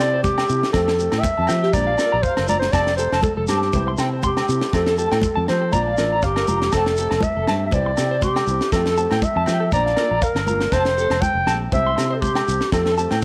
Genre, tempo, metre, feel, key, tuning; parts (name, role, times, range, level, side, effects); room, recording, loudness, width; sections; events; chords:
highlife guitar band; 120 BPM; 4/4; swing 55% on 16ths; F major; A4 = 440 Hz
dark clarinet; melody; 0.0-13.2 s; G4 to G5; -23 LUFS; equal
fingerpicked steel-string acoustic guitar; accompaniment; 0.0-13.1 s; E3 to G4; -33 LUFS; equal
electric guitar through a small old amp; arpeggios; 0.0-13.2 s; G4 to C6; -28 LUFS; equal; tremolo, tape echo
fingered electric bass; bass; 0.0-13.2 s; F1 to F3; -26 LUFS; equal
tight funk drum kit; drums; 0.0-13.2 s; kick drum, snare drum; -28 LUFS; equal
shekere; percussion; 0.0-13.2 s; -34 LUFS; equal
congas; percussion; 0.2-13.1 s; -32 LUFS; equal
agogo bells; percussion; 0.4-13.2 s; -36 LUFS; equal
light reverb, small room ambience; -20 LUFS; mono
0.0-13.2 A section
0.0 C; 0.7 Fadd9; 1.7 Bb; 2.7 Fadd9; 3.7 C; 4.7 Fadd9; 5.7 Bb; 6.7 Fadd9; 7.7 C; 8.7 Fadd9; 9.7 Bb; 10.7 Fadd9; 11.7 C; 12.7 Fadd9